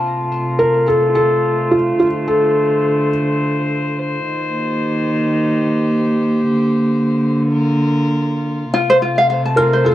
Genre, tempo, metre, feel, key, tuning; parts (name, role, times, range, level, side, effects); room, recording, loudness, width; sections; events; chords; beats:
folktronica; 107 BPM; 4/4; swing 56% on 16ths; F mixolydian; A4 = 436 Hz
dark string quartet; sustained chords; 0.0-9.9 s; C3 to C5; -16 LUFS; equal; low-pass filter
felt-muted upright piano; melody; 0.6-3.1, 9.6-9.9 s; F4 to Bb4; -14 LUFS; equal; tape echo
kalimba; second line; 8.7-9.8 s; F5 to F6; -23 LUFS; left 4 dB; tape echo
ukulele; arpeggios; 8.7-9.9 s; F4 to A5; -14 LUFS; equal; tape echo
small room ambience; dry, close 1970s-style studio recording; -14 LUFS; side -13 dB against mid
0.0-9.9 A section
filter sweep on string quartet 0.0-9.9
0.0 F; 2.0 Dm7; 4.3 Cm7; 6.5 Bb; 8.7 F
0.33 0.89 1.45 | 2.01 2.57 3.13 3.69 | 4.25 4.81 5.37 5.93 | 6.50 7.06 7.62 8.18 | 8.74 9.30 9.86